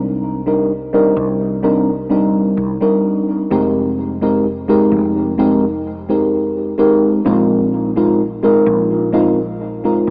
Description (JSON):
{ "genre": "vaporwave", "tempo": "64 BPM", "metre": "4/4", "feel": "straight", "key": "F dorian", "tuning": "A4 = 440 Hz", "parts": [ { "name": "mellow FM electric piano", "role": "accompaniment", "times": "0.0-10.1 s", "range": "G3 to Bb4", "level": "-16 LUFS", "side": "equal", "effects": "phaser, subtle chorus, analog delay" }, { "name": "woody fretless electric bass", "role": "bass", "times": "0.0-10.1 s", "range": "F1 to C2", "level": "-28 LUFS", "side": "equal", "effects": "analog chorus" } ], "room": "moderate huge ambient reverb, RT60 3.8 s", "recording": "cassette tape, small speaker sound", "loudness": "-16 LUFS", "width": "mono", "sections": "0.0-3.5 A section; 3.5-10.1 B section", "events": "none", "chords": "0.0 Cm9; 3.5 Fm11; 7.3 Bb7sus4", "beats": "0.70 1.64 2.57 | 3.51 4.45 5.38 6.32 | 7.26 8.20 9.13 10.07" }